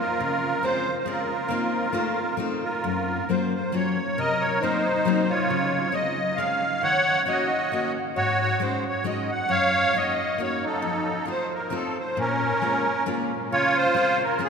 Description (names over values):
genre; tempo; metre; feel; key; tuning
musette waltz; 135 BPM; 3/4; swing 54% on 8ths; Bb minor; A4 = 440 Hz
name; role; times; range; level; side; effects
musette accordion; melody; 0.0-14.5 s; Db4 to Gb5; -23 LUFS; right 1 dB; none
picked steel-string acoustic guitar; accompaniment; 0.2-14.5 s; F2 to Gb4; -28 LUFS; left 3 dB; none
room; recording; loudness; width
wet cathedral reverb, RT60 6.4 s; recorded in a church or concert hall; -22 LUFS; side -6 dB against mid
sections
0.0-13.5 A section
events
none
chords
0.2 Dbmaj7; 1.5 F7sus4; 2.0 F7; 2.8 Gbmaj7; 4.2 Cm7b5; 5.5 Dbmaj7; 6.8 Ebm7; 8.2 Ab7sus4; 9.5 Ebm7/Gb; 10.8 F7; 12.2 Bbm7; 13.5 Dbmaj7